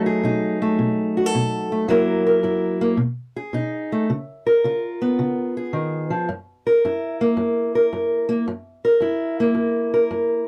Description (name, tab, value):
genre	blues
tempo	109 BPM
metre	4/4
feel	swing 67% on 8ths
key	F# mixolydian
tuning	A4 = 440 Hz
part	fingerpicked steel-string acoustic guitar	solo	0.0-10.5 s	F#2 to A#4	-21 LUFS	equal	none
room	light reverb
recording	dry, close 1970s-style studio recording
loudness	-21 LUFS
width	mono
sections	0.0-6.3 A section; 6.3-10.5 B section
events	none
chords	0.0 B7; 1.9 F#7; 3.0 B7; 4.1 C#7; 6.3 F#7